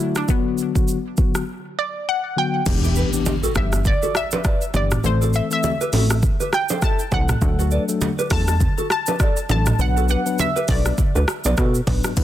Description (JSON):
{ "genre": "afrobeats", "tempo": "101 BPM", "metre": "4/4", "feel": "swing 58% on 16ths", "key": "E minor", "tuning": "A4 = 440 Hz", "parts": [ { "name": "analog pluck", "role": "melody", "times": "0.0-11.8 s", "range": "B3 to A5", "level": "-25 LUFS", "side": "equal", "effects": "chorus, ping-pong delay" }, { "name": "mellow tine electric piano", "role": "accompaniment", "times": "0.0-12.2 s", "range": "D3 to B4", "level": "-25 LUFS", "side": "left 6 dB", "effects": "none" }, { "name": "afro-pop drum kit", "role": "drums", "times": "0.2-12.2 s", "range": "crash cymbal, hi-hat, kick drum, rim click, shaker, toms", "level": "-21 LUFS", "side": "equal", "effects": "soft clipping on snare" }, { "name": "plucky analog bass", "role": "bass", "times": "2.7-12.2 s", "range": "E1 to B2", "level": "-20 LUFS", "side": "equal", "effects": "none" }, { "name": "congas and bongos", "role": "percussion", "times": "2.7-12.2 s", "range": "none", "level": "-29 LUFS", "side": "right 3 dB", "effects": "none" }, { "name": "impact", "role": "sound effects", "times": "2.7-5.0 s", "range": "none", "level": "-28 LUFS", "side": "equal", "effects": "none" }, { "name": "mellow electric guitar", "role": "riff", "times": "2.8-11.8 s", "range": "E4 to D5", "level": "-27 LUFS", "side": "right 1 dB", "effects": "none" } ], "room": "little or no reverb", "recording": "dense, heavily limited modern master", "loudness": "-18 LUFS", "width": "side -12 dB against mid", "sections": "0.0-2.7 A section; 2.7-12.2 B section", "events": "break 1.5-2.7; impact 2.7-5.0", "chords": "0.3 Bm; 2.7 Em7; 5.0 Am; 7.4 D; 9.8 Bm" }